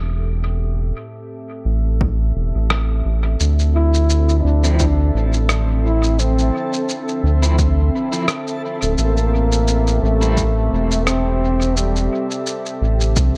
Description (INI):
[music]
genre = ambient dub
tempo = 86 BPM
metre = 4/4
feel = swing 56% on 16ths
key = D minor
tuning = A4 = 440 Hz
[part]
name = warbly tape-like pad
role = sustained chords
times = 0.0-13.4 s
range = A2 to E5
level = -29 LUFS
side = equal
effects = chorus, built-in reverb
[part]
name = round analog bass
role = bass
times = 0.0-13.3 s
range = D1 to D2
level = -19 LUFS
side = equal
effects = none
[part]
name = electronic kick drum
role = drums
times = 2.0-13.3 s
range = none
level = -24 LUFS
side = equal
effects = overdrive, studio reverb
[part]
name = electronic rim click and shaker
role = drums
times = 2.7-13.3 s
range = none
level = -27 LUFS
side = equal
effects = studio reverb, dub echo
[part]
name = backwards swelling texture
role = texture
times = 5.0-13.4 s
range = C4 to A4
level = -34 LUFS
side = equal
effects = built-in reverb
[part]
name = mellow trombone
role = melody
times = 3.7-12.5 s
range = G3 to E4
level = -25 LUFS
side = equal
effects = dub echo
[part]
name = electric guitar at the edge of break-up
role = stabs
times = 4.6-10.4 s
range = F3 to E4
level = -32 LUFS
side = equal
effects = tremolo, dub echo
[sound]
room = light reverb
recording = none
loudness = -18 LUFS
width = mono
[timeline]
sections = 0.0-13.4 A section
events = fade-in on ambient pad 0.0-13.4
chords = 0.0 Am7; 3.4 Dm9; 9.0 Am7